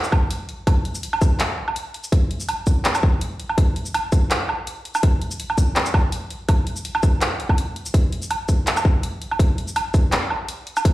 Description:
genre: drum and bass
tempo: 165 BPM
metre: 4/4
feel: swing 55% on 16ths, half-time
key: none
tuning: none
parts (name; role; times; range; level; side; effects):
- drum and bass drum kit; drums; 0.0-10.9 s; handclaps, hi-hat, shaker, woodblock; -24 LUFS; equal; none
- electronic kick drum; drums; 0.1-10.9 s; none; -17 LUFS; equal; overdrive
room: moderate digital room reverb, RT60 1.0 s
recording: played on a big sound system in a bare room, large studio reverb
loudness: -19 LUFS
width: side -16 dB against mid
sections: 0.0-10.9 A section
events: none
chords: none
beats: 0.31 | 0.67 1.03 1.40 1.76 | 2.12 2.49 2.85 3.21 | 3.58 3.94 4.31 4.67 | 5.03 5.40 5.76 6.12 | 6.49 6.85 7.21 7.58 | 7.94 8.31 8.67 9.03 | 9.40 9.76 10.12 10.49 | 10.85

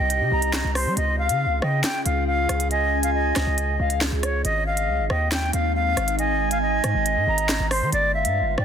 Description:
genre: hip hop, drill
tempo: 138 BPM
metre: 4/4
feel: half-time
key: unclear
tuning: A4 = 440 Hz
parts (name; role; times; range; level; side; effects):
- reedy silver concert flute; melody; 0.0-8.6 s; C5 to G5; -24 LUFS; equal; ping-pong delay
- silver concert flute; second line; 0.0-8.6 s; Eb5 to C6; -29 LUFS; right 2 dB; ping-pong delay
- warbly tape-like pad; sustained chords; 0.0-8.6 s; C3 to B4; -30 LUFS; left 2 dB; chorus, built-in reverb, phaser
- hard-hitting 808-style bass; bass; 0.0-8.6 s; G1 to G3; -25 LUFS; equal; none
- drill drum kit; drums; 0.1-8.6 s; handclaps, hi-hat, rim click, snare drum; -27 LUFS; right 1 dB; none
room: digital ambience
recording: dense, heavily limited modern master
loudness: -20 LUFS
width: side -8 dB against mid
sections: 0.0-8.6 A section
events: none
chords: 0.0 Cm; 1.0 Db; 4.4 Ab; 7.9 G7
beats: 0.10 0.54 | 0.97 1.40 1.84 2.27 | 2.71 3.14 3.58 4.01 | 4.45 4.88 5.32 5.75 | 6.19 6.62 7.06 7.49 | 7.93 8.36

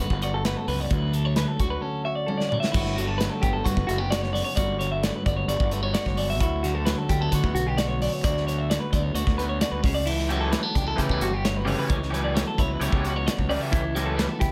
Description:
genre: math rock and midwest emo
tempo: 131 BPM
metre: 4/4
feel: straight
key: D major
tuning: A4 = 439 Hz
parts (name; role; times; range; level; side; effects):
- clean electric guitar; accompaniment; 0.0-14.5 s; D2 to F#4; -32 LUFS; equal; none
- clean electric guitar; arpeggios; 0.0-14.5 s; E4 to E5; -32 LUFS; equal; none
- fuzz fingered electric bass; bass; 0.0-14.5 s; F#1 to D3; -30 LUFS; equal; overdrive
- modern studio drum kit; drums; 0.1-14.5 s; crash cymbal, hi-hat, kick drum, snare drum, toms; -29 LUFS; equal; none
- raw garage guitar; riff; 10.3-14.3 s; E3 to G4; -32 LUFS; equal; overdrive
room: little or no reverb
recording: none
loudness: -25 LUFS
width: mono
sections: 0.0-2.7 A section; 2.7-14.5 B section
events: drum fill 2.3-2.7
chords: 0.0 Gmaj7; 0.9 Dmaj7; 2.7 Gmaj7; 6.4 D6; 9.8 A13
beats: 0.45 | 0.91 1.36 1.82 2.28 | 2.74 3.20 3.65 4.11 | 4.57 5.03 5.49 5.94 | 6.40 6.86 7.32 7.77 | 8.23 8.69 9.15 9.61 | 10.06 10.52 10.98 11.44 | 11.90 12.35 12.81 13.27 | 13.73 14.18

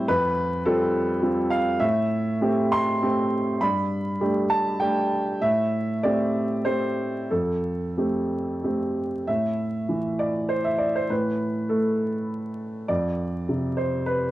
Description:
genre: neoclassical minimalist piano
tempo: 88-106 BPM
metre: 3/4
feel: rubato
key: A minor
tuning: A4 = 442 Hz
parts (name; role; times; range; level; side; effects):
- warm upright piano; solo; 0.0-14.3 s; F2 to C6; -22 LUFS; equal; cassette tape
room: moderate studio reverb, RT60 0.6 s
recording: home recording on cassette, vinyl crackle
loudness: -22 LUFS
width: side -15 dB against mid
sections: 0.0-9.3 A section; 9.3-14.3 B section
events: none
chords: 0.1 Fadd9; 1.8 Am7; 3.6 Gsus2; 5.4 Am7; 7.3 Fadd9; 9.3 A5; 12.9 F5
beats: | 0.07 0.65 1.22 | 1.80 2.41 3.02 | 3.61 4.21 4.80 | 5.41 6.02 6.64 | 7.30 7.96 8.62 | 9.27 9.88 10.49 | 11.09 11.70 12.30 | 12.89 13.47 14.06

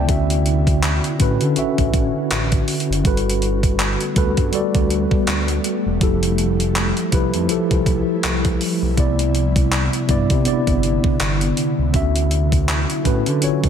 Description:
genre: contemporary R&B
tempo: 81 BPM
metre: 4/4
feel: swing 58% on 16ths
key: G major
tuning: A4 = 440 Hz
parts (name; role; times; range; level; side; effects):
- mellow tine electric piano; accompaniment; 0.0-13.7 s; C3 to A5; -21 LUFS; equal; medium stereo tremolo
- ethereal airy pad; sustained chords; 0.0-13.7 s; C3 to F#4; -25 LUFS; equal; ensemble chorus, built-in reverb
- smooth gliding synth bass; bass; 0.0-13.7 s; E1 to D3; -22 LUFS; equal; none
- gated 80s digital drum machine; drums; 0.1-13.7 s; handclaps, hi-hat, kick drum; -20 LUFS; equal; gated reverb
room: little or no reverb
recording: none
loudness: -16 LUFS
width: side -8 dB against mid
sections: 0.0-13.7 A section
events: none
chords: 0.1 Dmaj9; 3.0 Gmaj9; 6.0 Fmaj9; 9.0 Cmaj9; 11.9 Dmaj9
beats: | 0.09 0.83 1.57 2.31 | 3.05 3.79 4.53 5.27 | 6.01 6.75 7.49 8.23 | 8.97 9.72 10.46 11.20 | 11.94 12.68 13.42

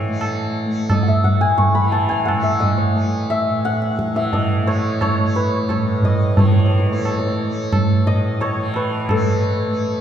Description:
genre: indian classical, Hindustani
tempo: 88 BPM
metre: 5/4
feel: straight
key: A raga yaman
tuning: A4 = 438 Hz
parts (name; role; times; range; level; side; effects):
- santur; melody; 0.0-10.0 s; A4 to C#6; -21 LUFS; left 1 dB; none
- tanpura; drone; 0.0-10.0 s; A2 to A3; -23 LUFS; equal; none
- tabla; percussion; 0.2-9.3 s; none; -19 LUFS; right 1 dB; none
room: wet church reverb, RT60 3.2 s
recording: recorded in a church or concert hall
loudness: -16 LUFS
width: side -9 dB against mid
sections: 0.0-10.0 A section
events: none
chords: none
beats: 0.21 0.90 1.59 2.27 | 2.96 3.64 4.33 5.01 5.69 | 6.37 7.05 7.73 8.41 9.08 | 9.76

